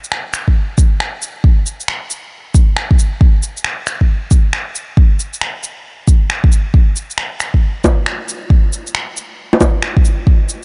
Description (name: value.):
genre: future garage.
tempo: 136 BPM.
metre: 4/4.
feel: swing 64% on 16ths.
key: none.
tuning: none.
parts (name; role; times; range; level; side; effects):
electronic shaker, finger snaps and bongos; drums; 0.0-10.6 s; none; -22 LUFS; equal; none.
electronic kick drum; drums; 0.5-10.4 s; none; -12 LUFS; equal; none.
room: little or no reverb.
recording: nothing above 10.5 kHz.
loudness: -15 LUFS.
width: mono.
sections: 0.0-10.6 A section.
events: none.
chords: none.